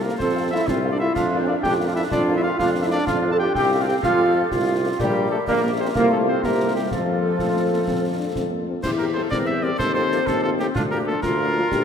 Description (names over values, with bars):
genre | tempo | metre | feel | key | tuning
military-style march for wind band | 125 BPM (dotted quarters) | 6/8 | straight | F major | A4 = 441 Hz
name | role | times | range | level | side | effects
warm cornet | melody | 0.0-11.8 s | F4 to A5 | -27 LUFS | equal | none
mellow woodwind section | second line | 0.0-11.8 s | C4 to C5 | -29 LUFS | right 2 dB | none
mellow French horn section | accompaniment | 0.0-11.6 s | A3 to F5 | -29 LUFS | left 4 dB | none
dark trombone section | sustained chords | 0.0-11.6 s | F3 to A4 | -23 LUFS | right 1 dB | none
clear tuba | bass | 0.0-11.8 s | Bb1 to F2 | -26 LUFS | equal | none
concert snare drum, concert bass drum and clash cymbals | drums | 0.2-11.8 s | none | -31 LUFS | right 1 dB | none
mellow euphonium | second line | 7.4-11.8 s | A3 to G4 | -26 LUFS | left 5 dB | none
room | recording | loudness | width
wet cathedral reverb, RT60 5.0 s | in a vast, echoing space | -19 LUFS | side -7 dB against mid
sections
0.0-8.8 A section; 8.8-11.8 B section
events
none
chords
0.0 F; 1.2 Bb/F; 3.1 F; 5.0 Gm/Bb; 6.0 F/C; 6.4 C7; 6.9 F; 8.8 C/E; 9.8 F7/Eb; 10.8 Bb/D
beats
| 0.20 0.68 | 1.16 1.64 | 2.12 2.59 | 3.07 3.55 | 4.03 4.51 | 4.99 5.47 | 5.95 6.43 | 6.91 7.39 | 7.87 8.35 | 8.83 9.31 | 9.79 10.27 | 10.75 11.23 | 11.71